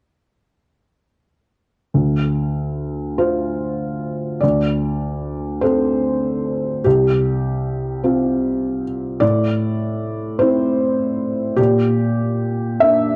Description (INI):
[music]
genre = neoclassical minimalist piano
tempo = 50 BPM (dotted quarters)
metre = 6/8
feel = rubato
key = D minor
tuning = A4 = 438 Hz
[part]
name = felt-muted upright piano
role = solo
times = 1.9-13.2 s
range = C2 to E5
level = -19 LUFS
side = equal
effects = cassette tape
[sound]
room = moderate spring reverb, RT60 1.3 s, small room ambience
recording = home recording on cassette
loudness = -20 LUFS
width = mono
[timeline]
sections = 1.9-4.4 A section; 4.4-13.2 B section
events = none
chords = 1.9 Dm7; 4.4 D5; 6.8 Csus4; 9.2 Am; 11.6 Gm/Bb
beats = | 1.93 3.17 | 4.43 5.64 | 6.85 8.04 | 9.22 10.40 | 11.58 12.81